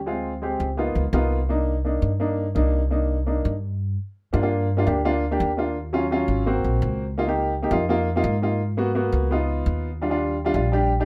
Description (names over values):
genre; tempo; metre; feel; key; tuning
Afro-Cuban jazz; 169 BPM; 4/4; straight; C minor; A4 = 440 Hz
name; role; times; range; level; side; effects
upright bass; bass; 0.0-11.0 s; Ab1 to Ab2; -27 LUFS; equal; none
warm upright piano; accompaniment; 0.1-11.1 s; Gb3 to G4; -26 LUFS; equal; none
room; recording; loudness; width
moderate small room reverb, RT60 0.6 s; rough home demo mix; -23 LUFS; mono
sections
0.0-4.3 A section; 4.3-11.1 B section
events
stop 3.6-4.3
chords
0.1 Dm7b5; 0.8 Db13; 1.5 Cm9; 4.3 Gm7; 5.8 Ebm7; 6.5 Ab7; 7.2 Db69; 8.6 Abm7; 9.3 Db9; 10.0 Ebmaj7